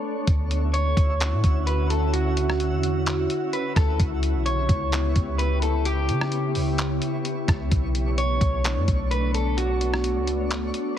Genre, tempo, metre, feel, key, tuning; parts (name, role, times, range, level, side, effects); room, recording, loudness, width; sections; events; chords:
hip hop, atmospheric cloud-rap; 129 BPM; 4/4; half-time; A4 = 440 Hz
glassy FM pad; sustained chords; 0.0-11.0 s; C#3 to C#5; -28 LUFS; left 1 dB; ensemble chorus, built-in reverb
twinkling granular texture; texture; 0.0-11.0 s; A3 to E5; -36 LUFS; equal; built-in reverb
soft 808-style bass; bass; 0.3-10.7 s; B1 to C#3; -24 LUFS; equal
lo-fi sampler-style drum kit; drums; 0.3-10.8 s; handclaps, hi-hat, kick drum, rim click; -25 LUFS; equal
electric guitar at the edge of break-up; melody; 0.7-10.9 s; F#4 to C#5; -28 LUFS; right 1 dB; warbly pitch drift, low-pass filter, tape echo
little or no reverb; heavily compressed radio sound; -21 LUFS; side -10 dB against mid
0.3-11.0 A section
break 0.0
0.3 Dmaj9; 4.0 C#m7b5; 7.7 Bm9